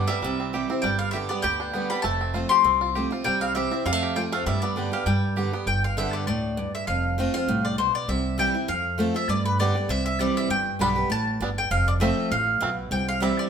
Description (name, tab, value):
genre	bluegrass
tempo	199 BPM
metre	4/4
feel	swing 55% on 8ths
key	G mixolydian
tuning	A4 = 441 Hz
part	bluegrass banjo	melody	0.0-5.7, 10.8-13.3 s	G3 to G4	-30 LUFS	right 5 dB	none
part	mandolin	melody	0.0-13.4 s	B4 to C6	-25 LUFS	left 3 dB	none
part	picked steel-string acoustic guitar	accompaniment	0.0-13.5 s	F2 to G4	-27 LUFS	right 1 dB	none
part	upright bass	bass	0.2-13.3 s	F1 to G2	-29 LUFS	right 1 dB	none
room	moderate stone room reverb, RT60 1.0 s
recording	band playing live in one room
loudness	-22 LUFS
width	side -7 dB against mid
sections	0.0-5.7 A section; 5.7-13.5 A section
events	none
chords	0.2 C; 0.8 G; 2.0 F; 3.3 C; 3.9 F; 4.5 G; 6.9 F; 8.1 C; 8.7 F; 9.3 G; 9.9 C; 10.5 G; 11.7 F; 12.9 C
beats	0.23 0.53 | 0.83 1.14 1.44 1.74 | 2.04 2.35 2.65 2.95 | 3.25 3.55 3.86 4.16 | 4.46 4.76 5.06 5.37 | 5.67 5.97 6.27 6.58 | 6.88 7.18 7.48 7.78 | 8.08 8.39 8.69 8.99 | 9.29 9.59 9.90 10.20 | 10.50 10.80 11.10 11.40 | 11.71 12.01 12.31 12.61 | 12.91 13.22